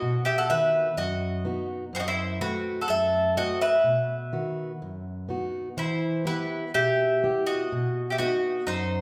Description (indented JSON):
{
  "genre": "greek folk, Greek bouzouki band",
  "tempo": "125 BPM",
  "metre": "4/4",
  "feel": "straight",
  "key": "E harmonic minor",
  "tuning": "A4 = 437 Hz",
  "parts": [
    { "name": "Greek bouzouki", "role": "melody", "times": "0.0-9.0 s", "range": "B4 to F#5", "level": "-29 LUFS", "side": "equal", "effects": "none" },
    { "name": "mandolin", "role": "second line", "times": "0.0-9.0 s", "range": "D#4 to B4", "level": "-31 LUFS", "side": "equal", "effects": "none" },
    { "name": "fingerpicked plugged-in steel-string acoustic guitar", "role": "accompaniment", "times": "0.0-9.0 s", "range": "F#2 to G4", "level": "-32 LUFS", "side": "equal", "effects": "none" }
  ],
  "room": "wet large studio reverb, RT60 1.4 s",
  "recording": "band playing live in one room",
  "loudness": "-26 LUFS",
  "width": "mono",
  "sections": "0.0-5.8 A section; 5.8-9.0 A section",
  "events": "none",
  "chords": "0.0 B; 1.9 F#dim; 3.9 B; 5.8 Em; 7.7 B",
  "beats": "| 0.01 0.49 0.97 1.45 | 1.93 2.41 2.89 3.37 | 3.85 4.33 4.81 5.29 | 5.77 6.25 6.74 7.22 | 7.70 8.18 8.66"
}